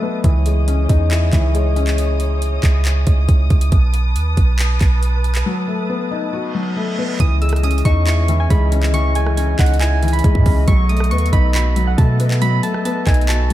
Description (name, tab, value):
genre	hip hop, trap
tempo	138 BPM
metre	4/4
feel	half-time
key	C# minor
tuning	A4 = 438 Hz
part	felt-muted upright piano	accompaniment	0.0-13.5 s	E3 to F#4	-21 LUFS	left 5 dB	none
part	muted studio string section	sustained chords	0.0-13.5 s	E3 to D#6	-29 LUFS	equal	none
part	warm 808-style bass	bass	0.2-13.5 s	B1 to B2	-16 LUFS	right 1 dB	none
part	trap drum kit	drums	0.2-13.5 s	handclaps, hi-hat, kick drum, rim click	-18 LUFS	right 1 dB	none
part	reverse cymbal	sound effects	6.5-7.2 s	none	-31 LUFS	right 3 dB	none
part	soft electric-piano-like synth keys	melody	7.2-13.5 s	F#5 to E6	-24 LUFS	right 3 dB	chorus, tape echo
room	light reverb, digital ambience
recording	none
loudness	-14 LUFS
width	side -14 dB against mid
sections	0.0-7.2 A section; 7.2-13.5 B section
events	break 5.5-7.2; reverse cymbal 6.5-7.2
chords	0.2 C#madd9; 3.7 B7; 7.2 C#madd9; 10.7 B7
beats	| 0.24 0.68 1.11 1.55 | 1.98 2.42 2.85 3.29 | 3.72 4.16 4.59 5.03 | 5.46 5.89 6.33 6.76 | 7.20 7.63 8.07 8.50 | 8.94 9.37 9.81 10.24 | 10.68 11.11 11.55 11.98 | 12.42 12.85 13.29